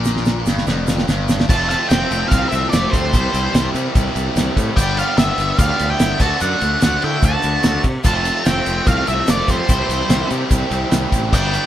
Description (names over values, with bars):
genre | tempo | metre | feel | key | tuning
classic rock | 146 BPM | 4/4 | straight | unclear | A4 = 438 Hz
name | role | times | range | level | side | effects
bright tonewheel organ | sustained chords | 0.0-1.5, 8.1-11.7 s | B3 to F5 | -32 LUFS | equal | none
biting overdriven guitar | riff | 0.0-11.7 s | F2 to G4 | -26 LUFS | right 6 dB | none
distorted electric guitar | riff | 0.0-11.7 s | F2 to C5 | -25 LUFS | left 6 dB | overdrive
fuzz fingered electric bass | bass | 0.0-11.6 s | F1 to D3 | -22 LUFS | equal | overdrive
tube shaker | percussion | 0.0-11.6 s | none | -34 LUFS | right 5 dB | none
cloth-damped thuddy drum kit | drums | 0.1-11.6 s | crash cymbal, kick drum, ride cymbal, snare drum | -18 LUFS | equal | none
octave-fuzz lead guitar | melody | 1.5-11.7 s | C5 to A5 | -21 LUFS | equal | distortion
octave-fuzz lead guitar | second line | 1.5-11.7 s | G3 to F#4 | -27 LUFS | right 2 dB | distortion
room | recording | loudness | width
light reverb | band playing live in one room | -15 LUFS | side -12 dB against mid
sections
0.0-1.5 A section; 1.5-11.7 B section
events
drum fill 0.0-1.5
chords
0.0 G; 1.5 F; 3.1 C; 4.8 G; 6.2 D; 8.1 F; 9.7 C